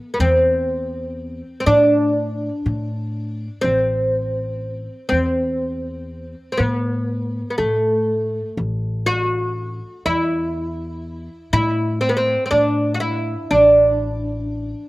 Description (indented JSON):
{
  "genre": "turkish",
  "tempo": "122 BPM (eighths)",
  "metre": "10/8",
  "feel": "straight",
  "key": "A makam huseyni",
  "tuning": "A4 = 440 Hz",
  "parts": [
    { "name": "oud", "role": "melody", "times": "0.0-14.9 s", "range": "A3 to F#4-30c", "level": "-18 LUFS", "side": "equal", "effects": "slapback echo" },
    { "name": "upright bass", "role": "bass", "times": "0.2-14.7 s", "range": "A1 to A2", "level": "-24 LUFS", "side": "equal", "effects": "none" }
  ],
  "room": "little or no reverb",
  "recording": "recorded outdoors, with no room sound",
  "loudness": "-17 LUFS",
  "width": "side -19 dB against mid",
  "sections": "0.0-14.9 A section",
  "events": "none",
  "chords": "none"
}